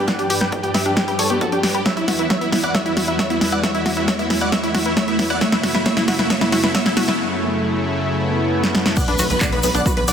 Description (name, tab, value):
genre	uplifting trance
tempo	135 BPM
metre	4/4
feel	straight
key	B minor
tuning	A4 = 438 Hz
part	big supersaw lead	melody	0.0-10.1 s	E4 to G5	-22 LUFS	right 1 dB	sidechain pumping, low-pass filter, digital delay
part	wide unison pluck	second line	0.0-10.1 s	E5 to G6	-30 LUFS	right 1 dB	sidechain pumping, digital delay
part	lush unison pad	sustained chords	0.0-10.1 s	E2 to D5	-24 LUFS	equal	chorus, sidechain pumping
part	tight sequenced synth	arpeggios	0.0-10.1 s	B3 to E5	-26 LUFS	left 3 dB	chorus, sidechain pumping, digital delay
part	riser, swell and impact	sound effects	0.1-10.1 s	none	-26 LUFS	right 1 dB	none
part	electronic kick drum	drums	0.1-9.9 s	none	-24 LUFS	equal	high-pass filter on kick
part	punchy analog drum machine	drums	0.1-10.1 s	crash cymbal, handclaps, hi-hat, snare drum	-21 LUFS	equal	sidechain pumping on hats, sidechain pumping on cymbals
part	egg shaker	percussion	9.0-10.1 s	none	-27 LUFS	left 2 dB	none
part	tight sequencer bass	bass	9.1-10.1 s	B1	-23 LUFS	equal	sidechain pumping
room	moderate lush hall reverb, RT60 1.9 s, digital ambience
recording	dense, heavily limited modern master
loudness	-16 LUFS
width	side -8 dB against mid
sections	0.0-9.0 A section; 9.0-10.1 B section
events	build-up 0.0-9.0; drum fill 0.0-7.2, 8.6-9.0; filter sweep on supersaw synth 0.0-9.0; filter sweep on synth arpeggio sound 0.0-9.0; riser 0.1-7.2; break 7.2-9.0; swell 8.2-9.0; drop 9.0-10.1; impact 9.0-10.1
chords	0.0 G; 1.9 Esus2; 5.4 F#m; 9.0 Bm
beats	| 0.08 0.52 0.97 1.41 | 1.86 2.30 2.75 3.19 | 3.63 4.08 4.52 4.97 | 5.41 5.86 6.30 6.75 | 7.19 7.63 8.08 8.52 | 8.97 9.41 9.86